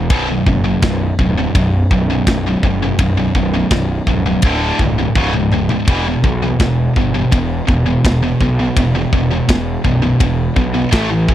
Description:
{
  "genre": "heavy metal",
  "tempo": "83 BPM",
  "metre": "4/4",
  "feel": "straight",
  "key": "unclear",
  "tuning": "A4 = 439 Hz",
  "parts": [
    { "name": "heavy high-gain guitar", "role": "riff", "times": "0.0-11.3 s", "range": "B1 to A3", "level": "-16 LUFS", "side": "equal", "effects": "distortion" },
    { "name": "fuzz picked electric bass", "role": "bass", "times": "0.0-11.3 s", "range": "B0 to B1", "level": "-19 LUFS", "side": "equal", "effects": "overdrive" },
    { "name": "tight metal drum kit", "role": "drums", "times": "0.1-11.3 s", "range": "kick drum, ride cymbal, snare drum, toms", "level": "-16 LUFS", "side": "equal", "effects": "none" }
  ],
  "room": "little or no reverb",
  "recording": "dry, close 1970s-style studio recording",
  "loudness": "-13 LUFS",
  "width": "side -12 dB against mid",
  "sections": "0.0-11.3 A section",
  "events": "drum fill 5.2-5.9",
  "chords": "0.1 B5; 4.4 D5; 5.2 C#5; 5.9 E5"
}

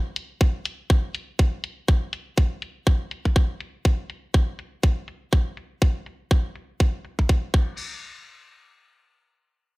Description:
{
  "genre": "minimal techno",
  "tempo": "122 BPM",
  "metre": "4/4",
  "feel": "swing 57% on 16ths",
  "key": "none",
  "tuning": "none",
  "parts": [
    { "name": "garage drum kit", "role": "drums", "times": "0.2-7.7 s", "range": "crash cymbal, hi-hat", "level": "-33 LUFS", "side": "left 2 dB", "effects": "low-pass filter on hats, studio reverb, low-pass filter on snare, low-pass filter on cymbals" },
    { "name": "electronic kick drum", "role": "drums", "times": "0.4-7.7 s", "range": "none", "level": "-18 LUFS", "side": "equal", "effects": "studio reverb" }
  ],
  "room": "small room reverb",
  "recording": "none",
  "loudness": "-22 LUFS",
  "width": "side -24 dB against mid",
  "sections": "0.0-7.8 A section; 7.8-9.8 B section",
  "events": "filter sweep on drum 0.0-7.8",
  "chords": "none"
}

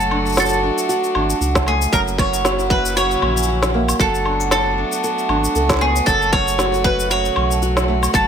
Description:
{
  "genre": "folktronica",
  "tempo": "116 BPM",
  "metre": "4/4",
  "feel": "swing 56% on 16ths",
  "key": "F# minor",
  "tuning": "A4 = 440 Hz",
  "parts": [
    { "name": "bowl-back mandolin", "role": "melody", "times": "0.0-8.3 s", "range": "G#4 to C#5", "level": "-20 LUFS", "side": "equal", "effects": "ping-pong delay" },
    { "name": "rich string quartet", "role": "sustained chords", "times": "0.0-8.3 s", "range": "C#3 to F#4", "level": "-27 LUFS", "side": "left 2 dB", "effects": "vintage 12-bit sampler grit" },
    { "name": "nylon-string guitar", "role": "arpeggios", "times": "0.0-8.3 s", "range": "F#2 to A4", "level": "-24 LUFS", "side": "equal", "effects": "none" },
    { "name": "warm sub bass", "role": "bass", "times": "0.0-8.3 s", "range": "F#1 to C#2", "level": "-22 LUFS", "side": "equal", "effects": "none" },
    { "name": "electronic shaker, woodblock and snare drum", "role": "drums", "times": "0.0-8.3 s", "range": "none", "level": "-23 LUFS", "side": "left 1 dB", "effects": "overdrive" },
    { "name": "vibraphone with soft mallets", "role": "second line", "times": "0.3-8.3 s", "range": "E5 to C#6", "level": "-25 LUFS", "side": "right 8 dB", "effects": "ping-pong delay" },
    { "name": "electronic kick drum", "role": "drums", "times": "1.6-8.3 s", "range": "none", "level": "-20 LUFS", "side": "equal", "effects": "overdrive" }
  ],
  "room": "moderate echo chamber reverb, RT60 2.2 s",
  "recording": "none",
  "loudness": "-15 LUFS",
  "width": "side -8 dB against mid",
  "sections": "0.0-8.3 A section",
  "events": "none",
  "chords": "0.0 D/F#; 1.9 F#7; 4.0 Bm7/F#; 6.1 F#m"
}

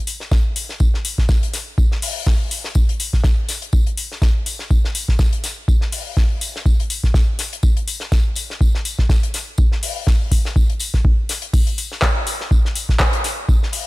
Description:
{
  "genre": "house",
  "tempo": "123 BPM",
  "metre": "4/4",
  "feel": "swing 56% on 16ths",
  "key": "none",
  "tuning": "none",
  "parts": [
    { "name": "damped 70s drum kit", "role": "drums", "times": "0.1-13.9 s", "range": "hi-hat, snare drum, tambourine", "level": "-29 LUFS", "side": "left 3 dB", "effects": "sidechain pumping on hats, high-pass filter on hats, high-pass filter on snare, sidechain pumping on perc, high-pass filter on perc, high-pass filter on room" },
    { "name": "electro analog drum machine", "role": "drums", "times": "0.1-13.8 s", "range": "crash cymbal, handclaps, hi-hat", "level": "-24 LUFS", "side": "left 2 dB", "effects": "none" },
    { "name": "electronic kick drum", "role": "drums", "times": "0.3-13.6 s", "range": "none", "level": "-16 LUFS", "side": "equal", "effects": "none" }
  ],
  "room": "little or no reverb",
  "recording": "none",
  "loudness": "-16 LUFS",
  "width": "side -21 dB against mid",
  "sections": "0.0-13.9 A section",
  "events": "none",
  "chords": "none"
}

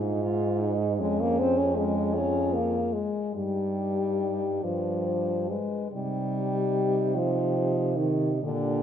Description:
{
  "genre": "classical, lyrical piece for horn quartet",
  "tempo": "43-53 BPM (dotted quarters)",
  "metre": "6/8",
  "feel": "rubato",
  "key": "C minor",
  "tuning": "A4 = 439 Hz",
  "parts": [
    { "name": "warm French horn", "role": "melody", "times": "0.0-8.8 s", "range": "F4 to C5", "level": "-34 LUFS", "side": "left 8 dB", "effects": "none" },
    { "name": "mellow French horn", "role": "second line", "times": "0.0-8.8 s", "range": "Db4 to F4", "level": "-32 LUFS", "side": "right 9 dB", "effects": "none" },
    { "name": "mellow French horn", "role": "bass", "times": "0.0-8.8 s", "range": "F2 to C3", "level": "-31 LUFS", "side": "right 3 dB", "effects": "none" },
    { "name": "mellow French horn", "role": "accompaniment", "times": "1.0-8.8 s", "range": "D3 to Db4", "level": "-27 LUFS", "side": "left 2 dB", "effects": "none" }
  ],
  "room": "moderate recital hall reverb, RT60 1.6 s",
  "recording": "none",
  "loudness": "-24 LUFS",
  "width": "side -9 dB against mid",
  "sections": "0.0-8.8 A section",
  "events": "none",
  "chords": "0.0 Ab5; 1.0 Db/F; 3.3 Eb/G; 4.6 G; 5.9 Cm"
}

